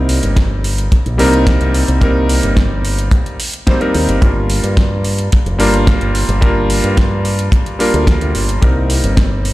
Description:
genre	nu-disco, nu disco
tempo	109 BPM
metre	4/4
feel	straight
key	G minor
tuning	A4 = 441 Hz
part	warm electric grand piano	accompaniment	0.0-9.5 s	G3 to C5	-17 LUFS	equal	ping-pong delay
part	fingered electric bass with an envelope filter	bass	0.0-9.5 s	F1 to G2	-16 LUFS	equal	sidechain pumping
part	pop drum kit	drums	0.1-9.5 s	hi-hat, snare drum	-23 LUFS	right 1 dB	overdrive
part	kick drum	drums	0.4-9.3 s	none	-12 LUFS	equal	none
room	light reverb, small room ambience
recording	played on a big sound system in a bare room, stone room reverb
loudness	-11 LUFS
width	side -17 dB against mid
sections	0.0-9.5 A section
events	none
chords	0.0 Cm7; 4.2 Gm7; 8.6 Cm7

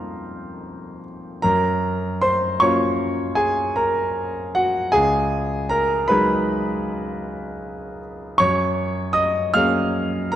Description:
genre	classical, impressionist solo piano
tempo	47-54 BPM (dotted quarters)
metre	9/8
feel	rubato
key	unclear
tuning	A4 = 440 Hz
part	warm concert grand piano	solo	0.0-10.4 s	Db2 to F6	-19 LUFS	equal	none
room	moderate concert hall reverb, RT60 2.2 s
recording	dark, warm production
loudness	-18 LUFS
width	side -11 dB against mid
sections	0.0-10.4 A section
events	none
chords	0.0 F9sus4; 1.5 Gbmaj7; 4.9 Db9sus4; 8.4 F#add9

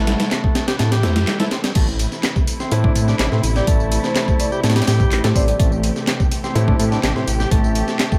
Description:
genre	breakbeat, breaks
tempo	125 BPM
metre	4/4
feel	straight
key	A dorian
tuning	A4 = 438 Hz
part	muted studio string section	sustained chords	0.0-8.2 s	C3 to F#5	-30 LUFS	equal	sidechain pumping
part	bright tonewheel organ	riff	0.0-8.2 s	G3 to A4	-28 LUFS	equal	delay
part	warm concert grand piano	stabs	0.0-8.2 s	A3 to G4	-30 LUFS	equal	vintage 12-bit sampler grit, delay
part	detuned saw bass	bass	0.0-7.8 s	A1 to A2	-21 LUFS	equal	none
part	breakbeat sampler-style drum kit	drums	0.1-8.2 s	crash cymbal, hi-hat, kick drum, snare drum	-22 LUFS	equal	studio reverb
part	garage drum kit	drums	0.3-8.2 s	handclaps, hi-hat, tambourine	-30 LUFS	equal	studio reverb
part	swell	sound effects	1.0-1.8 s	none	-36 LUFS	equal	none
part	marimba with soft mallets	melody	3.6-5.6 s	C5 to D5	-28 LUFS	equal	telephone sound, vintage 12-bit sampler grit, delay
room	digital ambience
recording	none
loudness	-18 LUFS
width	mono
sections	0.0-1.8 A section; 1.8-8.2 B section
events	filter sweep on tonewheel organ 0.0-1.8; drop 1.8-8.2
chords	0.0 Am

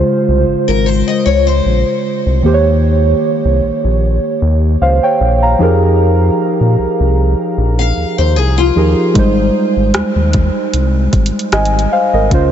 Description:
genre	contemporary R&B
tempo	76 BPM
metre	4/4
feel	swing 54% on 16ths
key	unclear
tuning	A4 = 439 Hz
part	muted felt-like synth keys	accompaniment	0.0-12.5 s	Db3 to Bb5	-13 LUFS	right 1 dB	chorus
part	round analog bass	bass	0.0-12.5 s	Ab1 to Bb2	-13 LUFS	equal	none
part	picked steel-string acoustic guitar	arpeggios	0.7-2.4, 7.8-9.1 s	F4 to F5	-19 LUFS	left 7 dB	lush chorus, tape echo
part	smooth R&B drum kit	drums	9.2-12.5 s	hi-hat, kick drum, rim click	-17 LUFS	equal	none
room	moderate huge ambient reverb, RT60 7.4 s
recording	dreamy mix soaked in reverb, nothing above 7.8 kHz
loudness	-10 LUFS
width	side -9 dB against mid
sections	0.0-12.5 A section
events	none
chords	0.0 Dbmaj7; 2.4 Eb7; 5.6 Fm11; 9.2 Abmaj7

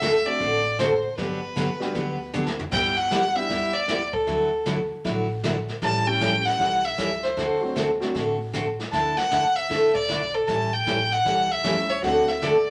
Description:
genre	country, western swing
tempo	155 BPM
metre	4/4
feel	swing 64% on 8ths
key	G major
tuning	A4 = 443 Hz
part	clear fiddle	melody	0.0-12.7 s	A4 to A5	-26 LUFS	equal	none
part	picked steel-string acoustic guitar	accompaniment	0.0-12.5 s	D3 to A4	-28 LUFS	equal	none
part	upright bass	bass	0.0-12.7 s	G1 to D2	-38 LUFS	equal	none
part	jazz brush drum kit	drums	0.0-12.7 s	brushed snare drum, crash cymbal, hi-hat, kick drum, snare drum, toms	-36 LUFS	equal	none
part	clear upright piano	accompaniment	0.3-3.5, 6.1-8.1, 11.6-12.3 s	F#3 to A4	-33 LUFS	equal	none
room	wet large studio reverb, RT60 0.9 s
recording	none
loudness	-24 LUFS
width	mono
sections	0.0-2.7 A section; 2.7-12.7 A section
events	drum fill 2.3-2.7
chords	0.0 D7; 1.2 Gmaj7; 2.7 G6; 4.3 Dadd9; 5.8 A7; 7.4 D7; 8.9 Dsus2; 10.5 A7; 12.0 D7

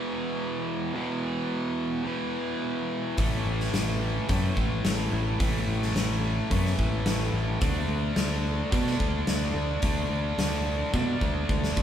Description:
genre	classic rock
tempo	108 BPM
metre	4/4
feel	straight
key	unclear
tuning	A4 = 440 Hz
part	overdriven electric guitar	riff	0.0-11.8 s	E2 to D4	-29 LUFS	equal	none
part	modern bright picked electric bass	bass	3.2-11.8 s	A1 to B2	-28 LUFS	equal	none
part	big rock drum kit	drums	3.2-11.8 s	hi-hat, kick drum, snare drum	-29 LUFS	equal	none
room	moderate studio reverb, RT60 1.0 s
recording	band playing live in one room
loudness	-25 LUFS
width	side -10 dB against mid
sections	0.0-11.8 A section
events	drum fill 10.9-11.8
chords	0.0 E5; 3.2 A5; 7.6 D5

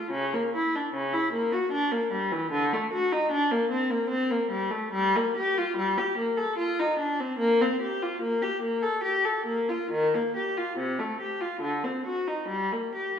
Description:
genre	classical, baroque-style suite movement for unaccompanied viola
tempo	67-77 BPM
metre	3/4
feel	rubato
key	G minor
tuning	A4 = 437 Hz
part	rich viola	solo	0.0-13.2 s	C3 to A4	-25 LUFS	left 1 dB	none
room	moderate concert hall reverb, RT60 1.7 s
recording	studio ambience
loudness	-25 LUFS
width	side -8 dB against mid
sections	0.0-13.2 A section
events	none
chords	none

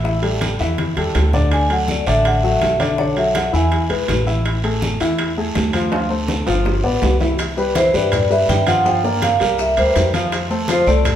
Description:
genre	Afro-Cuban jazz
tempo	164 BPM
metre	4/4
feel	straight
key	unclear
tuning	A4 = 440 Hz
part	warm concert grand piano	accompaniment	0.0-11.2 s	D3 to F5	-20 LUFS	left 2 dB	none
part	upright bass	bass	0.0-11.2 s	G1 to G2	-21 LUFS	equal	none
part	congas	percussion	0.0-11.2 s	none	-28 LUFS	left 1 dB	none
part	guiro	percussion	0.0-11.2 s	none	-30 LUFS	right 3 dB	none
part	bongos	percussion	0.1-11.2 s	none	-31 LUFS	left 4 dB	none
part	timbales	percussion	0.2-11.2 s	none	-27 LUFS	right 4 dB	none
part	vibraphone with medium mallets	melody	1.5-3.9, 7.8-11.2 s	B4 to G#5	-18 LUFS	right 1 dB	none
part	maracas	percussion	7.4-11.2 s	none	-36 LUFS	left 6 dB	none
room	wet large studio reverb, RT60 1.3 s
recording	band playing live in one room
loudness	-15 LUFS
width	side -10 dB against mid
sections	0.0-7.4 A section; 7.4-11.2 B section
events	drum fill 0.8-1.5, 5.9-7.4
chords	0.0 A5; 1.5 Dadd9; 3.0 Bm7; 3.7 E; 4.5 A5; 5.9 Dm7; 6.7 G7; 7.4 Cmaj7; 8.9 Gm7; 10.3 F

